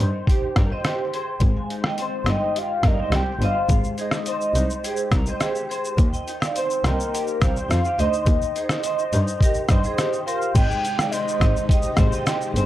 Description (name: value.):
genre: indie pop, bedroom pop.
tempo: 105 BPM.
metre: 4/4.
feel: straight.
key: unclear.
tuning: A4 = 439 Hz.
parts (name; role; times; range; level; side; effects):
soft octave-layered synth lead; melody; 0.0-12.7 s; Bb4 to G5; -26 LUFS; equal; analog chorus, slapback echo.
electric guitar through a small old amp; accompaniment; 0.0-12.7 s; Eb3 to C5; -29 LUFS; left 2 dB; ensemble chorus, warbly pitch drift.
clear double bass; bass; 0.0-12.6 s; G1 to G2; -23 LUFS; equal; none.
trip hop sampler-style drum kit; drums; 0.0-12.7 s; crash cymbal, hi-hat, kick drum, rim click, shaker; -22 LUFS; equal; none.
vibraphone with hard mallets; second line; 0.3-12.4 s; G4 to Ab5; -29 LUFS; right 6 dB; ensemble chorus, slapback echo.
string machine, violins; sustained chords; 10.6-12.7 s; C3 to G4; -32 LUFS; equal; ensemble chorus.
room: light reverb.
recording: dark, warm production.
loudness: -19 LUFS.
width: side -14 dB against mid.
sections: 0.0-10.6 A section; 10.6-12.7 B section.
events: none.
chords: 0.0 Eb6; 1.4 Abmaj7; 6.0 Eb6; 10.6 Abmaj7.